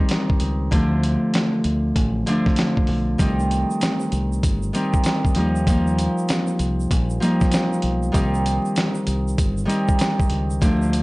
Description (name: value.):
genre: hip hop, boom-bap hip-hop.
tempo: 97 BPM.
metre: 4/4.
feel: swing 62% on 16ths.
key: C dorian.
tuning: A4 = 444 Hz.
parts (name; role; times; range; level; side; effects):
Celtic harp; accompaniment; 0.0-11.0 s; D3 to Eb4; -21 LUFS; equal; cassette tape.
dusty soul sampler-style drum kit; drums; 0.1-11.0 s; hi-hat, kick drum, snare drum; -21 LUFS; equal; none.
deep dub fingered electric bass; bass; 0.4-11.0 s; G1 to Eb2; -24 LUFS; equal; none.
tube shaker; percussion; 3.2-11.0 s; none; -42 LUFS; right 4 dB; none.
room: light reverb.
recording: dry, gritty hardware recording, vinyl crackle, nothing above 10.6 kHz.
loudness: -18 LUFS.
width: side -22 dB against mid.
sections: 0.0-11.0 A section.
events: none.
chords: 0.0 Cm; 0.7 Dm; 3.2 Cm; 5.4 Ebadd9; 8.1 Cm.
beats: 0.10 | 0.72 1.34 1.96 2.58 | 3.19 3.81 4.43 5.05 | 5.67 6.29 6.91 7.53 | 8.14 8.76 9.38 10.00 | 10.62.